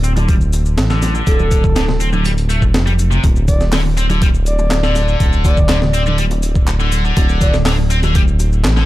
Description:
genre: breakbeat, breaks.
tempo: 122 BPM.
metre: 4/4.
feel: straight.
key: D minor.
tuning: A4 = 444 Hz.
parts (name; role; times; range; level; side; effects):
high-gain distorted guitar; riff; 0.0-8.9 s; C3 to C4; -21 LUFS; left 1 dB; distortion, tube saturation, low-pass filter, dub echo.
dark detuned saw bass; bass; 0.0-8.9 s; D1 to A1; -15 LUFS; equal; none.
breakbeat sampler-style drum kit; drums; 0.0-8.9 s; hi-hat, kick drum, snare drum; -16 LUFS; equal; none.
electronic shaker and handclaps; drums; 0.0-8.9 s; none; -29 LUFS; left 1 dB; overdrive.
congas and bongos; percussion; 0.2-8.5 s; none; -27 LUFS; right 1 dB; none.
breathy flute-like synth lead; melody; 1.3-7.6 s; A4 to D5; -24 LUFS; equal; chorus, small speaker sound, cassette tape, dub echo.
room: little or no reverb.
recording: dark, warm production.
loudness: -12 LUFS.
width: side -16 dB against mid.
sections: 0.0-8.9 A section.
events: none.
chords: none.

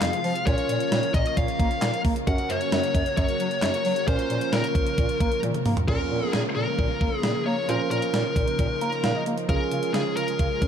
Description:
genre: synth-pop.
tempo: 133 BPM.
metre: 4/4.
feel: straight.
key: Bb minor.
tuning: A4 = 440 Hz.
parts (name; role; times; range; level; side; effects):
high-gain lead guitar; melody; 0.0-10.7 s; Ab4 to Gb5; -27 LUFS; left 2 dB; distortion, tape echo, shimmer reverb.
warm grand piano; accompaniment; 0.0-10.7 s; C4 to Bb5; -32 LUFS; right 5 dB; shimmer reverb.
string machine, violas; sustained chords; 0.0-10.7 s; C3 to Bb4; -31 LUFS; equal; ensemble chorus, shimmer reverb.
warm bass clarinet; bass; 0.0-10.7 s; F2 to Db4; -29 LUFS; equal; none.
clean 12-bit digital drum machine; drums; 0.0-10.7 s; handclaps, hi-hat, kick drum, snare drum, toms; -26 LUFS; equal; none.
downlifter; sound effects; 5.9-9.5 s; none; -37 LUFS; right 3 dB; none.
room: light reverb, digital ambience.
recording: dark, warm production.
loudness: -22 LUFS.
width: side -8 dB against mid.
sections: 0.0-5.9 A section; 5.9-10.7 B section.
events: drum fill 5.4-5.9; grand piano fill 8.6-9.5.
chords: 0.5 Bbm; 2.3 Gb; 4.1 Bbm; 9.5 Db.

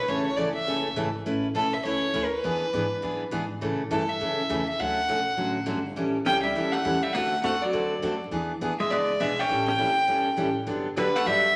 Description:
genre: country, western swing.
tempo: 204 BPM.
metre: 4/4.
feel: swing 61% on 8ths.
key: unclear.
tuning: A4 = 442 Hz.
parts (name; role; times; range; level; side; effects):
rich fiddle; melody; 0.0-11.6 s; A4 to G5; -28 LUFS; equal; none.
upright bass; bass; 0.0-11.5 s; F#1 to A2; -42 LUFS; equal; none.
picked steel-string acoustic guitar; accompaniment; 0.1-11.5 s; C#3 to B4; -30 LUFS; equal; none.
archtop guitar, miked and amplified; second line; 6.3-11.6 s; D3 to C#4; -33 LUFS; equal; none.
room: wet large studio reverb, RT60 1.2 s.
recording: vinyl crackle.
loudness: -26 LUFS.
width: mono.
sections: 0.0-11.6 A section.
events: none.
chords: 0.1 A; 1.3 Aadd9; 2.4 E7; 3.6 A; 4.8 Dmaj7; 6.0 A7; 7.1 D7; 8.3 E7; 9.5 A7; 10.7 Gmaj7.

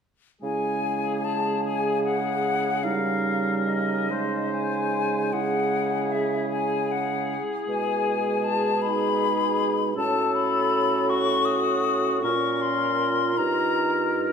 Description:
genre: classical, slow romantic movement for wind quintet.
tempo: 45-54 BPM (dotted quarters).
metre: 6/8.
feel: rubato.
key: C# minor.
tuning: A4 = 440 Hz.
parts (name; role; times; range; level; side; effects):
bright silver concert flute; melody; 0.4-14.2 s; D#5 to D#6; -26 LUFS; left 6 dB; none.
mellow oboe; second line; 0.4-14.3 s; F#4 to B#4; -29 LUFS; left 2 dB; none.
mellow French horn; accompaniment; 0.4-14.3 s; G3 to D#4; -29 LUFS; right 1 dB; none.
warm clarinet; accompaniment; 0.4-14.3 s; D#4 to F#4; -31 LUFS; right 8 dB; none.
mellow bassoon; bass; 0.4-14.3 s; G2 to C#3; -29 LUFS; right 3 dB; none.
room: wet recital hall reverb, RT60 1.4 s.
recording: none.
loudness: -22 LUFS.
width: side -6 dB against mid.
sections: 0.4-14.3 A section.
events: none.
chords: 0.4 C#m; 2.8 D#7/C#; 4.1 G#/C#; 5.3 C#m; 7.7 G#m/B; 10.0 F#m/A; 12.2 D#7/A#.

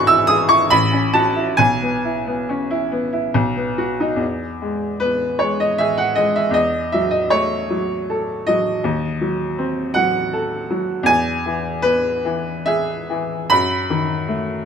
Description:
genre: classical, romantic character piece for solo piano.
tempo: 65-82 BPM.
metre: 3/4.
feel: rubato.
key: E major.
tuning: A4 = 440 Hz.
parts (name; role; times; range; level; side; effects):
bright upright piano; solo; 0.0-14.7 s; G#1 to E6; -16 LUFS; equal; none.
room: moderate recital hall reverb, RT60 1.5 s.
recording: close, detailed microphones.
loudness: -17 LUFS.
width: side -7 dB against mid.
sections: 0.0-4.2 A section; 4.2-14.7 B section.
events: none.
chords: 0.0 E/G#; 0.7 F#m7/A; 1.6 E/B; 3.3 B; 4.2 E; 6.5 F#m7/E; 8.8 D#dim7; 11.1 E; 13.5 D#dim/F#.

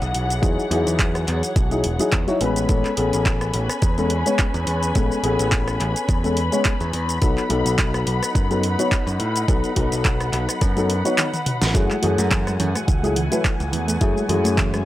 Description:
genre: nu-disco, nu disco.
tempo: 106 BPM.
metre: 4/4.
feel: swing 55% on 16ths.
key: unclear.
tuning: A4 = 441 Hz.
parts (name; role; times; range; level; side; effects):
muted studio string section; sustained chords; 0.0-14.9 s; E3 to B5; -27 LUFS; left 1 dB; sidechain pumping.
modern bright picked electric bass; bass; 0.0-14.8 s; E1 to A2; -24 LUFS; equal; none.
pop drum kit; drums; 0.0-14.8 s; handclaps, hi-hat, rim click, shaker, snare drum, toms; -25 LUFS; equal; overdrive.
dark concert grand piano; accompaniment; 0.4-14.9 s; F#3 to C#5; -24 LUFS; left 2 dB; tape echo.
electronic kick drum; drums; 0.4-14.7 s; none; -21 LUFS; equal; overdrive.
soft round pluck; arpeggios; 11.7-14.8 s; E3 to A3; -27 LUFS; right 3 dB; chorus, cassette tape, sidechain pumping, tape echo.
room: digital ambience.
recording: dry, gritty hardware recording, transformer saturation.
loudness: -18 LUFS.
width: side -14 dB against mid.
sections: 0.0-14.9 A section.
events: kick drops out 11.2-11.7; drum fill 11.2-11.7.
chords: 0.0 Emaj9; 2.4 Amaj9; 7.2 B7; 11.7 F#m9.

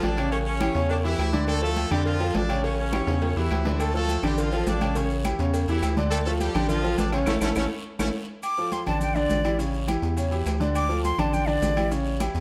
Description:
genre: latin, salsa.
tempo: 207 BPM.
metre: 4/4.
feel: straight.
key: D harmonic minor.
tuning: A4 = 441 Hz.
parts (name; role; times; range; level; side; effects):
bright horn section; melody; 0.0-8.1 s; E3 to D5; -33 LUFS; equal; none.
clear baby grand piano; accompaniment; 0.0-12.4 s; C#3 to D5; -30 LUFS; equal; none.
rubbery square bass; bass; 0.0-12.4 s; A1 to F2; -29 LUFS; equal; none.
congas; percussion; 0.0-12.4 s; none; -36 LUFS; equal; none.
cowbell; percussion; 0.0-8.1 s; none; -39 LUFS; equal; none.
guiro; percussion; 0.0-12.4 s; none; -46 LUFS; equal; none.
timbales and agogo bells; percussion; 0.0-12.4 s; none; -37 LUFS; equal; none.
claves; percussion; 0.2-12.3 s; none; -45 LUFS; equal; none.
maracas; percussion; 3.8-12.4 s; none; -46 LUFS; equal; none.
breathy bright jazz flute; melody; 8.4-11.9 s; D5 to D6; -29 LUFS; equal; none.
room: moderate large studio reverb, RT60 1.3 s.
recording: none.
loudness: -25 LUFS.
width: mono.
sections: 0.0-8.4 A section; 8.4-12.4 B section.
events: drum fill 2.9-3.8, 8.0-8.4; band accent 7.3-8.4; flute solo 8.4-12.4.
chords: 0.3 A7; 1.5 Dm; 2.6 A7; 3.8 Dm; 5.0 A7; 6.1 Dm; 7.3 A; 8.4 Dm; 9.6 A7; 10.8 Dm.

